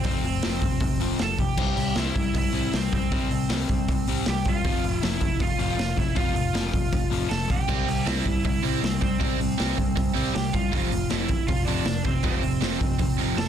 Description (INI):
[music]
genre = punk rock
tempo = 158 BPM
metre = 4/4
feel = straight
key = unclear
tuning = A4 = 441 Hz
[part]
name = lead guitar through a small cranked amp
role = melody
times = 0.0-13.5 s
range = C4 to A5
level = -30 LUFS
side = right 6 dB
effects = overdrive, ping-pong delay
[part]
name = overdriven semi-hollow guitar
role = riff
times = 0.0-13.5 s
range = F2 to C4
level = -29 LUFS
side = left 11 dB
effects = none
[part]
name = overdriven picked electric bass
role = bass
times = 0.0-13.5 s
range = F1 to C2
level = -31 LUFS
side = equal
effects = none
[part]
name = raw garage drum kit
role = drums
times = 0.0-13.5 s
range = crash cymbal, hi-hat, kick drum, snare drum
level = -26 LUFS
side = equal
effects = none
[part]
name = crunchy overdriven guitar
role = riff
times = 7.7-13.5 s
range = F2 to C4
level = -30 LUFS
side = right 16 dB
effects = none
[sound]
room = light reverb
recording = dense, heavily limited modern master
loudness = -22 LUFS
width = side -9 dB against mid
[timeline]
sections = 0.0-13.5 A section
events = none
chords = 0.0 F; 1.6 C; 4.6 F5; 7.7 C; 10.7 F5